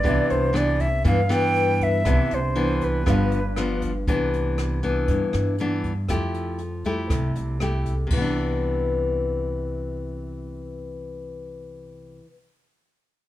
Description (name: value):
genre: bossa nova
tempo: 119 BPM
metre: 4/4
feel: straight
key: C major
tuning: A4 = 440 Hz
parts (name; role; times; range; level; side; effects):
- silver concert flute; melody; 0.0-3.8 s; B4 to G5; -25 LUFS; right 2 dB; none
- nylon-string guitar; accompaniment; 0.0-12.3 s; G2 to G4; -25 LUFS; left 2 dB; none
- warm grand piano; accompaniment; 0.0-4.1 s; C4 to B5; -33 LUFS; right 7 dB; none
- jazz brush drum kit; drums; 0.0-8.2 s; crash cymbal, hi-hat, kick drum, rim click; -28 LUFS; equal; none
- upright bass; bass; 0.1-12.2 s; G1 to G2; -26 LUFS; right 1 dB; none
room: moderate large studio reverb, RT60 0.8 s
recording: minimal, uncompressed stereo recording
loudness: -21 LUFS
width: side -14 dB against mid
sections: 0.0-4.1 A section; 4.1-8.1 B section; 8.1-12.1 C section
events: none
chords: 0.1 Cmaj9; 3.1 G7; 4.1 Cmaj9; 6.1 Fmaj9; 8.1 Cmaj9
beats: | 0.05 0.55 1.06 1.56 | 2.06 2.56 3.07 3.57 | 4.07 4.58 5.08 5.58 | 6.09 6.59 7.10 7.60 | 8.11 8.61 9.12 9.62 | 10.13 10.63 11.14 11.64